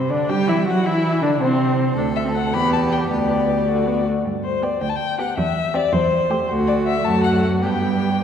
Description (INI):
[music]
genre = quick classical-period movement for string quartet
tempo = 106 BPM (dotted quarters)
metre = 6/8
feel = straight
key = G major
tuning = A4 = 440 Hz
[part]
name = rich violin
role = melody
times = 0.0-8.2 s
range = C5 to B5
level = -22 LUFS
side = left 5 dB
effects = none
[part]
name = rich cello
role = bass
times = 0.0-8.2 s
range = D2 to G3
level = -22 LUFS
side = right 3 dB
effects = none
[part]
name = rich violin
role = second line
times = 0.1-8.2 s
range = C4 to A4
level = -25 LUFS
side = left 2 dB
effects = none
[part]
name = rich viola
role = accompaniment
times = 0.1-8.2 s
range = A3 to G4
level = -25 LUFS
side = right 1 dB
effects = none
[sound]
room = wet church reverb, RT60 2.6 s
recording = recorded in a church or concert hall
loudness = -17 LUFS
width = side -8 dB against mid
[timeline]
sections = 0.0-8.2 A section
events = none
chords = 0.0 G5; 0.9 Dsus2; 1.4 N.C.; 2.0 D5; 2.5 Em; 3.1 G/D; 3.7 D; 4.3 G; 5.4 C/E; 5.9 Am7/E; 6.5 D; 7.6 G